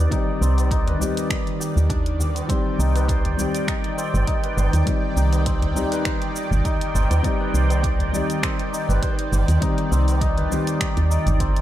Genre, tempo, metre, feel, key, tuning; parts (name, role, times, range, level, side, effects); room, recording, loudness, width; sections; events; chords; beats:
organic downtempo; 101 BPM; 4/4; swing 54% on 16ths; C harmonic minor; A4 = 440 Hz
felt-muted upright piano; accompaniment; 0.0-11.6 s; Eb3 to D5; -28 LUFS; left 4 dB; sidechain pumping, digital delay, shimmer reverb
warm analog pad; sustained chords; 0.0-11.6 s; Eb3 to G5; -28 LUFS; right 2 dB; chorus, sidechain pumping, shimmer reverb
santur; arpeggios; 0.0-11.6 s; C4 to C5; -29 LUFS; left 2 dB; digital delay, shimmer reverb
woody FM bass; bass; 0.0-11.6 s; G1 to Eb2; -20 LUFS; right 1 dB; sidechain pumping
deep house drum kit; drums; 0.1-11.6 s; finger snaps, hi-hat, shaker; -31 LUFS; right 1 dB; overdrive
electronic kick drum; drums; 0.1-11.5 s; -24 LUFS; right 1 dB; overdrive
tabla; percussion; 0.1-11.4 s; -32 LUFS; left 2 dB
light reverb, digital ambience; -19 LUFS; side -13 dB against mid
0.0-11.6 A section
0.0 Cmadd9
| 0.12 0.71 1.30 1.90 | 2.49 3.09 3.68 4.27 | 4.87 5.46 6.06 6.65 | 7.25 7.84 8.43 9.03 | 9.62 10.21 10.81 11.40